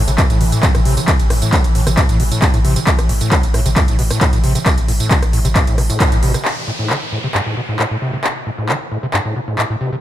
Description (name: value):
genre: driving peak-time techno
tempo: 134 BPM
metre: 4/4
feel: straight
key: A minor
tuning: A4 = 440 Hz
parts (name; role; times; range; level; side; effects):
- overdriven acid bass; riff; 0.0-10.0 s; G2 to E3; -20 LUFS; equal; distortion, wide subtle chorus, sidechain pumping, digital delay
- saturated sub bass; bass; 0.0-6.3 s; A1; -18 LUFS; equal; sidechain pumping, low-pass filter
- swarming drone; drone; 0.0-6.5 s; A2 to E3; -27 LUFS; right 1 dB; built-in reverb, sidechain pumping
- techno drum kit; drums; 0.1-9.7 s; handclaps, hi-hat, ride cymbal, rim click, tambourine; -19 LUFS; equal; overdrive
- electronic kick drum; drums; 0.2-6.1 s; none; -15 LUFS; equal; none
- downlifter; sound effects; 6.5-10.0 s; none; -28 LUFS; equal; none
room: light reverb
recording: none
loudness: -13 LUFS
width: side -12 dB against mid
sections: 0.0-6.5 A section; 6.5-10.0 B section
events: drop 0.0-6.5; band accent 6.0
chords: 0.0 A5; 6.5 Am